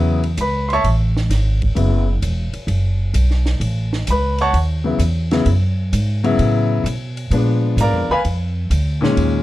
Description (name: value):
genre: modal jazz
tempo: 130 BPM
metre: 4/4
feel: swing 68% on 8ths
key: unclear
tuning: A4 = 440 Hz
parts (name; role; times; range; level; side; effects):
- clear concert grand piano; accompaniment; 0.0-9.4 s; A#2 to D#6; -18 LUFS; left 2 dB; none
- upright bass; bass; 0.0-9.4 s; E1 to B2; -17 LUFS; equal; none
- compact cocktail drum kit; drums; 0.2-9.3 s; hi-hat, kick drum, ride cymbal, snare drum; -30 LUFS; right 2 dB; none
room: little or no reverb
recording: dark, warm production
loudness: -15 LUFS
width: side -16 dB against mid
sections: 0.0-9.2 A section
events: none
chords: 0.0 A; 1.8 F#m7; 5.5 A/F#; 7.3 A#7b9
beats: 0.38 0.84 1.30 | 1.77 2.23 2.69 3.16 | 3.62 4.08 4.55 5.01 | 5.47 5.93 6.40 6.86 | 7.32 7.78 8.25 8.71 | 9.17